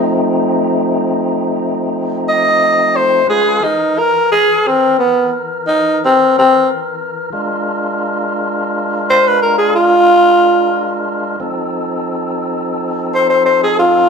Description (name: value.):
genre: blues.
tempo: 59 BPM (dotted quarters).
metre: 12/8.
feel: straight.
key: F mixolydian.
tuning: A4 = 440 Hz.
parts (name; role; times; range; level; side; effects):
growling tenor saxophone; melody; 0.0-14.1 s; B3 to Eb5; -10 LUFS; equal; none.
tonewheel organ; sustained chords; 0.0-14.1 s; E3 to B4; -17 LUFS; left 1 dB; overdrive, fast rotary speaker.
room: moderate large studio reverb, RT60 1.1 s.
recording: band playing live in one room.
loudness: -12 LUFS.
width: side -6 dB against mid.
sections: 0.0-14.1 A section.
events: none.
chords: 0.0 F7; 3.3 E(#11); 7.3 Bb7; 11.4 F7.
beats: 0.23 1.25 2.26 | 3.28 4.30 5.32 6.33 | 7.35 8.36 9.38 10.40 | 11.41 12.43 13.45.